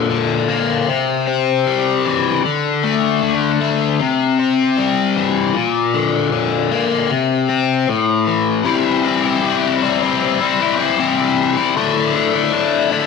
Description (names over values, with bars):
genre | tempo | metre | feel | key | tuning
rock | 77 BPM | 4/4 | straight | unclear | A4 = 441 Hz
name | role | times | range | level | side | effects
cranked stack guitar | solo | 0.0-13.1 s | A2 to E4 | -14 LUFS | left 6 dB | overdrive, flanger
room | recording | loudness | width
moderate echo chamber reverb, RT60 1.4 s, digital ambience | none | -14 LUFS | side -4 dB against mid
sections
0.0-8.6 A section; 8.6-13.1 B section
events
none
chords
0.0 Bb; 0.9 C; 2.4 D5; 4.0 C; 5.5 Bb; 7.1 N.C.; 7.9 A5; 8.6 C; 11.7 Dsus2